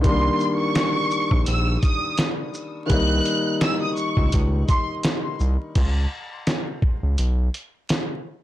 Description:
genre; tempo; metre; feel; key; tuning
hip hop, boom-bap hip-hop; 84 BPM; 4/4; swing 55% on 16ths; unclear; A4 = 441 Hz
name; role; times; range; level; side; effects
dark baby grand piano; accompaniment; 0.0-5.8 s; Eb3 to Eb4; -25 LUFS; left 2 dB; cassette tape, high-pass filter, low-pass filter
smooth synth bass; bass; 0.0-7.5 s; Bb1 to C#2; -21 LUFS; equal; transformer saturation
dusty soul sampler-style drum kit; drums; 0.0-8.1 s; crash cymbal, hi-hat, kick drum, shaker, snare drum; -23 LUFS; equal; none
warm studio violin section; melody; 0.1-4.9 s; C6 to F#6; -26 LUFS; equal; high-pass filter, low-pass filter, ping-pong delay
finger snaps; percussion; 0.8-5.2 s; none; -36 LUFS; right 2 dB; none
room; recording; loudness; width
light reverb; blown-out, overdriven recording, vinyl crackle, overdrive; -20 LUFS; side -14 dB against mid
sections
0.0-5.8 A section; 5.8-8.4 B section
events
break 5.8-8.4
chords
0.0 Cm9; 5.8 Bsus2

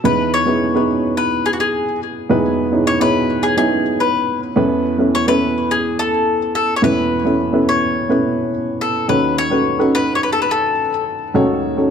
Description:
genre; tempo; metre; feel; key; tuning
pop; 106 BPM; 4/4; straight; E major; A4 = 438 Hz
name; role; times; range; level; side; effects
dark upright piano; accompaniment; 0.0-11.9 s; D#2 to C#5; -16 LUFS; right 1 dB; none
mandolin; melody; 0.1-11.0 s; F#4 to C#5; -19 LUFS; left 4 dB; ping-pong delay
room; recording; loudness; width
moderate large studio reverb, RT60 0.9 s; dark, warm production; -14 LUFS; side -7 dB against mid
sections
0.0-11.9 A section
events
none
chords
0.0 Emaj7; 4.6 Aadd9/E; 9.1 D#m7b5

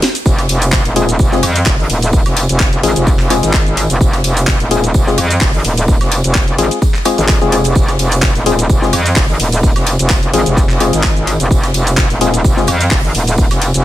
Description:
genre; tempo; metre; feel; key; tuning
bass house; 128 BPM; 4/4; swing 54% on 16ths; F minor; A4 = 440 Hz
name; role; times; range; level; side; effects
garage drum kit; drums; 0.0-13.8 s; handclaps, hi-hat, shaker, snare drum, woodblock; -18 LUFS; equal; studio reverb
oversized low-tuned drum kit; drums; 0.0-13.7 s; hi-hat, snare drum, tambourine; -25 LUFS; right 2 dB; high-pass filter on hats, studio reverb, high-pass filter on snare, high-pass filter on perc, high-pass filter on room
metallic wobble bass; bass; 0.3-13.8 s; Eb1 to F2; -14 LUFS; equal; chorus, overdrive, sidechain pumping
electronic kick drum; drums; 0.3-13.5 s; none; -14 LUFS; equal; studio reverb
percussive organ stab; stabs; 1.0-12.7 s; Ab3 to Ab4; -17 LUFS; left 4 dB; chorus, sidechain pumping, digital delay
room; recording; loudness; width
small room ambience; none; -10 LUFS; side -14 dB against mid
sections
0.0-13.8 A section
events
drum fill 0.0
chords
0.0 Fm

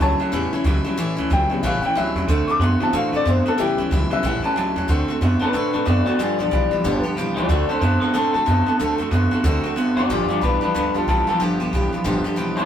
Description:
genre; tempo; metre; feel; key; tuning
rockabilly; 184 BPM; 4/4; swing 61% on 8ths; unclear; A4 = 443 Hz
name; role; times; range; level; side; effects
dark upright piano; accompaniment; 0.0-4.9 s; C#3 to D6; -22 LUFS; left 2 dB; none
picked steel-string acoustic guitar; accompaniment; 0.0-12.7 s; G2 to G4; -26 LUFS; left 2 dB; none
electric guitar through a small old amp; riff; 0.0-12.7 s; G2 to B3; -23 LUFS; right 2 dB; none
upright bass; bass; 0.0-12.7 s; F#1 to A2; -23 LUFS; equal; none
electric guitar through a small old amp; melody; 5.4-12.7 s; C4 to D5; -22 LUFS; left 3 dB; none
room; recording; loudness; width
moderate studio reverb, RT60 0.6 s; band playing live in one room; -18 LUFS; side -9 dB against mid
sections
0.0-4.9 A section; 4.9-12.7 B section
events
upright piano solo 0.0-4.9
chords
0.0 A7; 2.3 D7; 3.6 A7; 4.9 D7; 6.2 G7; 7.5 D7; 10.1 G7

